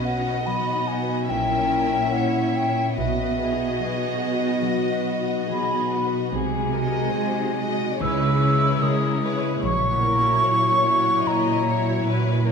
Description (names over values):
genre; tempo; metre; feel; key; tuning
classical, slow romantic movement for symphony orchestra; 73 BPM; 4/4; rubato; B major; A4 = 440 Hz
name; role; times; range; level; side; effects
warm studio violin section; melody; 0.0-12.5 s; C#5 to E5; -33 LUFS; left 2 dB; none
baroque flute; second line; 0.0-12.1 s; D#5 to E6; -24 LUFS; left 1 dB; none
dark chamber violin section; second line; 0.0-12.5 s; F#4 to D#5; -32 LUFS; left 5 dB; none
warm studio viola section; accompaniment; 0.0-12.5 s; F#3 to F#4; -30 LUFS; right 2 dB; none
mellow French horn section; sustained chords; 0.0-12.5 s; F#3 to F#4; -29 LUFS; left 2 dB; none
concert harp; arpeggios; 0.0-12.5 s; A#2 to C#5; -29 LUFS; left 8 dB; none
rich chamber double bass section; bass; 0.0-10.3 s; A#1 to C#2; -32 LUFS; right 5 dB; none
rich studio cello section; bass; 0.0-12.5 s; A#2 to C#3; -27 LUFS; right 4 dB; none
room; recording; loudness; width
moderate scoring stage reverb, RT60 2.1 s; minimal, uncompressed stereo recording; -20 LUFS; side -6 dB against mid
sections
0.0-12.5 A section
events
none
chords
0.0 B; 1.3 A#dim7; 3.0 B; 6.3 G#7/B#; 8.0 C#m7; 9.6 F#7/A#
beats
0.47 1.30 2.13 | 2.97 3.79 4.62 5.51 | 6.33 7.14 8.00 8.82 | 9.63 10.44 11.26 12.06